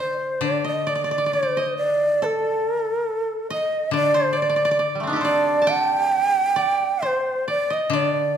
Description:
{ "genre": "japanese traditional, Japanese chamber music", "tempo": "68 BPM", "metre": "2/4", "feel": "rubato", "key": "D in sen", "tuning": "A4 = 440 Hz", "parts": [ { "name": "breathy shakuhachi", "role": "melody", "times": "0.0-8.4 s", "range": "A4 to G5", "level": "-21 LUFS", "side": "right 2 dB", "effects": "none" }, { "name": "koto", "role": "second line", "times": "0.0-8.4 s", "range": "G3 to A5", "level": "-26 LUFS", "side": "equal", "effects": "none" }, { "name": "koto", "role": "accompaniment", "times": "0.0-8.4 s", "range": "D3", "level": "-29 LUFS", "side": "left 8 dB", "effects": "none" } ], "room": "moderate concert hall reverb, RT60 1.8 s", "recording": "minimal, uncompressed stereo recording", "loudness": "-19 LUFS", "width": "side -8 dB against mid", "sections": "0.4-8.4 A section", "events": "none", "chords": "none" }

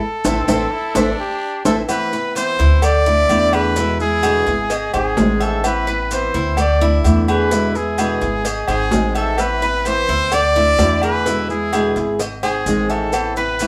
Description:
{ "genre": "latin, Cuban son and guajira", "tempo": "128 BPM", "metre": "4/4", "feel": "straight", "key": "A harmonic minor", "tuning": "A4 = 440 Hz", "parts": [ { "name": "clear trumpet", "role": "melody", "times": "0.0-13.7 s", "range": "G4 to D5", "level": "-22 LUFS", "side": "equal", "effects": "none" }, { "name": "flamenco guitar", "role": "accompaniment", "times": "0.2-13.7 s", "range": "B2 to G#4", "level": "-24 LUFS", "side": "equal", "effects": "none" }, { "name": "Cuban tres", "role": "arpeggios", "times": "0.2-13.7 s", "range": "E4 to E5", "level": "-27 LUFS", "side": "equal", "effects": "none" }, { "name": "upright bass", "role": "bass", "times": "0.2-13.7 s", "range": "G#1 to E2", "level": "-23 LUFS", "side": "equal", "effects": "none" }, { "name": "bongos and cowbell", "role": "percussion", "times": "0.2-13.7 s", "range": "none", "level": "-30 LUFS", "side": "equal", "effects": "none" }, { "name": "maracas", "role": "percussion", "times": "0.2-13.7 s", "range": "none", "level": "-34 LUFS", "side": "equal", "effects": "none" }, { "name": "timbales and agogo bells", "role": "percussion", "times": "0.2-13.7 s", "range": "none", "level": "-26 LUFS", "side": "equal", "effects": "none" }, { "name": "growling trumpet", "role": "second line", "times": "0.3-1.9 s", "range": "C4 to E4", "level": "-30 LUFS", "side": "equal", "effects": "none" } ], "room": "wet studio reverb, RT60 0.7 s", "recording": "band playing live in one room", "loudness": "-17 LUFS", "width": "mono", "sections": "0.0-1.9 A section; 1.9-13.7 B section", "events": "band accent 0.0-1.9; drum fill 1.0-1.9", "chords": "0.0 Am; 1.9 Cmaj9; 2.8 Dsus2; 3.8 E7; 4.7 G#; 5.6 Amadd9; 6.6 Dsus2; 7.5 E7; 8.4 G#; 9.4 Amadd9; 10.3 Dsus2; 11.3 E7; 12.2 G#; 13.1 Amadd9" }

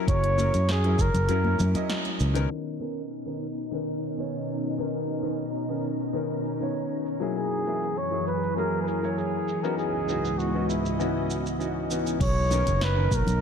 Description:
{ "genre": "sunset chillout", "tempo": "99 BPM", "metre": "4/4", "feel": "straight", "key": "unclear", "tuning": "A4 = 439 Hz", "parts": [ { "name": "clear concert grand piano", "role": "accompaniment", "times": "0.0-13.1 s", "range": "D#3 to D#5", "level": "-31 LUFS", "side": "moving between left 7 dB and right 2 dB", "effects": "auto-pan, tape echo" }, { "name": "mellow flugelhorn", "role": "melody", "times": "0.1-1.9, 7.4-13.4 s", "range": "E4 to C#5", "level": "-29 LUFS", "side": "right 1 dB", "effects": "vintage 12-bit sampler grit, tape echo" }, { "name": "fingered electric bass", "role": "bass", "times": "0.1-2.5, 12.2-13.4 s", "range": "F#1 to F#2", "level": "-24 LUFS", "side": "right 1 dB", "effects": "none" }, { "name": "deep house drum kit", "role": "drums", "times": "0.1-13.4 s", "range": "crash cymbal, hi-hat, shaker, snare drum", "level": "-35 LUFS", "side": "right 1 dB", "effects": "none" }, { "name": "electronic kick drum", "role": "drums", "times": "0.1-1.1, 12.2-13.2 s", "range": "none", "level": "-27 LUFS", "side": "right 1 dB", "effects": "none" }, { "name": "congas", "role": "percussion", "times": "0.4-2.2, 12.5-13.4 s", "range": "none", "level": "-32 LUFS", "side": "left 2 dB", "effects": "none" }, { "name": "soft string machine", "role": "sustained chords", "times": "2.8-13.4 s", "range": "C#2 to A#5", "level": "-30 LUFS", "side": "equal", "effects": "ensemble chorus" } ], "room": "moderate lush hall reverb, RT60 2.1 s", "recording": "dark, warm production, low-pass filter", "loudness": "-24 LUFS", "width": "side -7 dB against mid", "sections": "0.0-2.5 A section; 2.5-12.2 B section; 12.2-13.4 C section", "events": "kick drops out 1.3-2.5; band accent 1.9-2.2; filter sweep 2.5-12.2", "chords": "0.0 F#7; 2.5 Bmaj9; 7.4 F#9; 9.8 C#m11; 12.2 F#" }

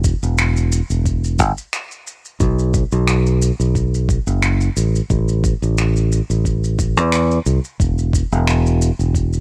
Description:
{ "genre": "sunset chillout", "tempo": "89 BPM", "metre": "4/4", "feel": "swing 54% on 16ths", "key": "unclear", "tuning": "A4 = 442 Hz", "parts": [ { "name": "fingered electric bass", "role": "bass", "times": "0.0-9.4 s", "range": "E1 to E2", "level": "-18 LUFS", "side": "equal", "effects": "none" }, { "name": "electronic kick drum", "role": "drums", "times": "0.0-9.3 s", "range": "none", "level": "-22 LUFS", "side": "equal", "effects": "overdrive" }, { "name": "shaker and finger snaps", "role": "drums", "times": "0.0-9.4 s", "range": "none", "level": "-27 LUFS", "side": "equal", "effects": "none" } ], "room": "little or no reverb", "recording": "rough home demo mix", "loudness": "-18 LUFS", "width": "mono", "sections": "0.0-9.4 A section", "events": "none", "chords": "none" }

